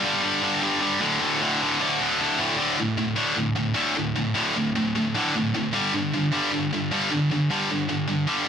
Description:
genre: metal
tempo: 153 BPM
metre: 4/4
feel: straight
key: unclear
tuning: A4 = 440 Hz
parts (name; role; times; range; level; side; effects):
- heavy high-gain guitar; solo; 0.0-8.5 s; D2 to G3; -21 LUFS; equal; distortion
room: moderate studio reverb, RT60 0.5 s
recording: none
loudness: -21 LUFS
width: side -7 dB against mid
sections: 0.0-2.6 A section; 2.6-8.5 B section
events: half time 0.0-2.6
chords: 0.0 G5; 1.0 D5; 5.7 G5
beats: 0.24 0.63 | 1.03 1.42 1.81 2.21 | 2.60 3.00 3.39 3.78 | 4.18 4.57 4.96 5.36 | 5.75 6.14 6.53 6.92 | 7.31 7.70 8.09

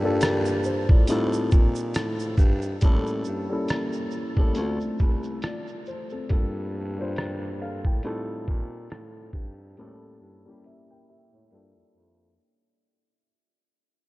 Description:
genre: lo-fi hip hop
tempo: 69 BPM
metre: 4/4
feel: swing 57% on 16ths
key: G minor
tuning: A4 = 438 Hz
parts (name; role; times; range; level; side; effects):
- dark upright piano; accompaniment; 0.0-13.3 s; G3 to G5; -29 LUFS; left 1 dB; cassette tape, low-pass filter
- growling baritone saxophone; bass; 0.0-12.3 s; C2 to Bb2; -30 LUFS; equal; none
- trip hop sampler-style drum kit; drums; 0.2-12.6 s; hi-hat, kick drum, rim click, shaker; -22 LUFS; equal; none
room: light reverb, small room ambience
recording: cassette tape, low-pass filter, nothing above 10.8 kHz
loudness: -23 LUFS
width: side -20 dB against mid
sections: 0.0-13.3 A section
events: filter sweep 0.0-13.3; fade-out 0.7-13.3; break 9.8-13.3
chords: 0.0 Gm7; 1.1 F9/A; 2.8 A7b9; 4.6 Dm7; 6.3 Gm7; 8.0 F9/A; 9.8 A7b9; 11.5 Gm9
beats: 0.21 1.08 1.95 | 2.82 3.69 4.56 5.43 | 6.30 7.17 8.04 8.91 | 9.78 10.65 11.52 12.39

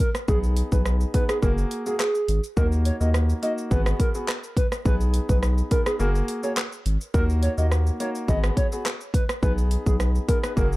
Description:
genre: dancehall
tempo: 105 BPM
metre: 4/4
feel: straight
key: unclear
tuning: A4 = 442 Hz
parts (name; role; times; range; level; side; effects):
- hollow clarinet-like synth lead; melody; 0.0-10.7 s; G#4 to Eb5; -29 LUFS; right 1 dB; chorus, tape echo
- pop drum kit; drums; 0.0-10.8 s; handclaps, hi-hat, kick drum, rim click, shaker; -24 LUFS; equal; none
- warm grand piano; accompaniment; 0.3-10.8 s; Bb3 to G#4; -30 LUFS; left 1 dB; none
- saturated sub bass; bass; 0.3-10.8 s; Gb1 to Eb2; -22 LUFS; equal; none
room: digital ambience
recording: dark, warm production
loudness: -21 LUFS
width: side -19 dB against mid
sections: 0.0-10.8 A section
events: none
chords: 0.3 B6; 1.4 Gbadd9; 2.6 Ebm; 3.7 Abm7; 4.9 B6; 6.0 Gbadd9; 7.1 Ebm; 8.3 Abm7; 9.4 B6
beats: | 0.28 0.85 1.43 2.00 | 2.57 3.14 3.71 4.28 | 4.86 5.43 6.00 6.57 | 7.14 7.71 8.28 8.86 | 9.43 10.00 10.57

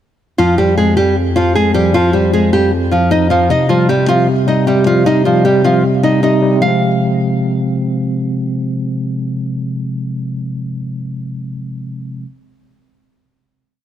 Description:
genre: hip hop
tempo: 154 BPM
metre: 4/4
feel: half-time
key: F minor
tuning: A4 = 441 Hz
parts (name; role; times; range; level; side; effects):
- nylon-string guitar; melody; 0.4-7.7 s; F3 to F5; -13 LUFS; equal; none
- tine electric piano; accompaniment; 0.4-12.2 s; F2 to C4; -15 LUFS; equal; fast stereo tremolo
room: light reverb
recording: none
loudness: -12 LUFS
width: side -10 dB against mid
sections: 0.4-6.6 hook; 6.6-9.7 final chord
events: none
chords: 0.4 Fm; 3.5 Cm; 6.6 Fm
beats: | 0.38 0.77 1.16 1.55 | 1.94 2.33 2.72 3.11 | 3.50 3.89 4.28 4.67 | 5.06 5.45 5.84 6.23 | 6.62 7.01 7.40 7.79 | 8.18 8.56 8.95 9.34

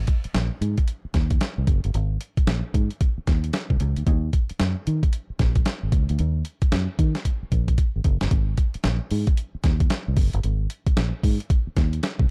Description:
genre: R&B, new jack swing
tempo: 113 BPM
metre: 4/4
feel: swing 62% on 16ths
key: unclear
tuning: A4 = 441 Hz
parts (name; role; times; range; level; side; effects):
- fingered electric bass; bass; 0.0-12.3 s; Gb1 to Eb3; -26 LUFS; equal; none
- boom bap sampler-style drum kit; drums; 0.1-12.3 s; hi-hat, kick drum, snare drum; -24 LUFS; equal; none
room: little or no reverb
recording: dark, warm production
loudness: -23 LUFS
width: mono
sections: 0.0-8.3 A section; 8.3-12.3 B section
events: drum fill 7.2-8.3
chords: none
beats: 0.35 0.88 1.41 | 1.94 2.47 3.00 3.53 | 4.06 4.59 5.13 5.66 | 6.19 6.72 7.25 7.78 | 8.31 8.84 9.37 9.90 | 10.44 10.97 11.50 12.03

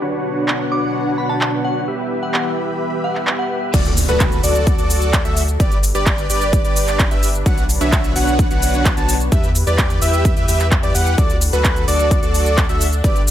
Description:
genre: EDM, festival progressive house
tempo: 129 BPM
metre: 4/4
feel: straight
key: D major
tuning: A4 = 439 Hz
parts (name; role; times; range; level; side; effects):
- lush unison pad; sustained chords; 0.0-13.3 s; B2 to B5; -26 LUFS; equal; chorus, phaser, sidechain pumping
- dense compressed supersaw; riff; 0.0-13.2 s; D4 to A5; -23 LUFS; equal; sidechain pumping, low-pass filter, ping-pong delay
- big-room dance drum kit; drums; 0.5-13.3 s; cabasa, crash cymbal, handclaps, hi-hat; -22 LUFS; equal; overdrive
- glassy synth bell; melody; 0.7-3.7 s; F#5 to D6; -26 LUFS; left 1 dB; chorus, tremolo, vintage 12-bit sampler grit, ping-pong delay
- wide unison lead; arpeggios; 3.7-13.2 s; B4 to A5; -22 LUFS; equal; cassette tape, sidechain pumping, ping-pong delay
- saturated sub bass; bass; 3.7-13.3 s; G1 to E2; -20 LUFS; equal; sidechain pumping
- electronic kick drum; drums; 3.7-13.1 s; none; -17 LUFS; equal; overdrive
- impact; sound effects; 3.7-5.6 s; none; -26 LUFS; equal; none
room: light reverb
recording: none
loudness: -14 LUFS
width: side -11 dB against mid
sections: 0.0-3.7 A section; 3.7-13.3 B section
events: drop 3.7-13.3; impact 3.7-5.6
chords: 0.0 Bmadd9; 1.9 Em; 3.7 D; 5.6 G; 7.5 Bmadd9; 9.3 Em; 11.2 D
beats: | 0.02 0.48 0.95 1.41 | 1.88 2.34 2.81 3.27 | 3.74 4.20 4.67 5.13 | 5.60 6.06 6.53 6.99 | 7.46 7.92 8.39 8.86 | 9.32 9.79 10.25 10.71 | 11.18 11.65 12.11 12.58 | 13.04

